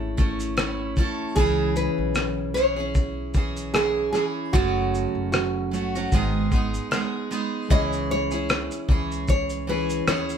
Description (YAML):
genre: acoustic pop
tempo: 76 BPM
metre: 4/4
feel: swing 55% on 16ths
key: C# minor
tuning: A4 = 441 Hz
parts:
  - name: nylon-string guitar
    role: melody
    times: 0.0-10.4 s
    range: F#4 to D#5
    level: -26 LUFS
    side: right 1 dB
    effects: none
  - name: picked steel-string acoustic guitar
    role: accompaniment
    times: 0.0-10.4 s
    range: F#2 to A4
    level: -27 LUFS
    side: right 1 dB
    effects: none
  - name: upright bass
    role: bass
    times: 0.0-10.4 s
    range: F#1 to D#2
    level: -31 LUFS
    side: equal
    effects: none
  - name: cloth-damped thuddy drum kit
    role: drums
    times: 0.2-10.4 s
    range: kick drum, rim click, shaker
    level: -23 LUFS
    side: equal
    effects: none
  - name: warm grand piano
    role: accompaniment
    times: 7.7-10.4 s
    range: G#3 to C#5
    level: -36 LUFS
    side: left 5 dB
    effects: none
room: light reverb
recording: band playing live in one room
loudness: -22 LUFS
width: side -8 dB against mid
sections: 0.0-7.7 A section; 7.7-10.4 B section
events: none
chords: 0.0 A; 1.4 C#m; 4.5 F#m; 6.1 G#m; 7.7 C#m